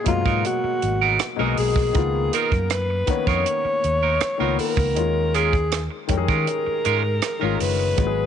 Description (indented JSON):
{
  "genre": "lush 1970s-style soul",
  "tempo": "80 BPM",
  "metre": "4/4",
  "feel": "straight",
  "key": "unclear",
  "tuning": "A4 = 442 Hz",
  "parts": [
    { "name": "breathy alto saxophone", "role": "melody", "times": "0.0-8.3 s", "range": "E#4 to C#5", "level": "-24 LUFS", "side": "equal", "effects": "none" },
    { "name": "warm baby grand piano", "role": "accompaniment", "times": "0.0-8.3 s", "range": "A#2 to G#4", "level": "-26 LUFS", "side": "left 14 dB", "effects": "none" },
    { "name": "fingered electric bass", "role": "bass", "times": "0.1-8.3 s", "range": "F#1 to D#3", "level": "-25 LUFS", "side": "equal", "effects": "none" },
    { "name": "compact cocktail drum kit", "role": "drums", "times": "0.1-8.2 s", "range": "hi-hat, kick drum, rim click", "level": "-25 LUFS", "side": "right 3 dB", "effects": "none" },
    { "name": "clean electric guitar", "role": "riff", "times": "0.3-7.8 s", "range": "F#3 to A#4", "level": "-25 LUFS", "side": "right 12 dB", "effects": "none" }
  ],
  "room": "light reverb",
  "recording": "1960s-style stereo with parts hard left and right, nothing above 10.3 kHz",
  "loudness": "-19 LUFS",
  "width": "side -8 dB against mid",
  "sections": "0.0-8.3 A section",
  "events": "none",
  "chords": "0.0 G#m9; 1.9 C#13; 5.0 D#9sus4",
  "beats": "0.44 1.20 | 1.95 2.71 3.46 4.21 | 4.97 5.72 6.48 7.23 | 7.99"
}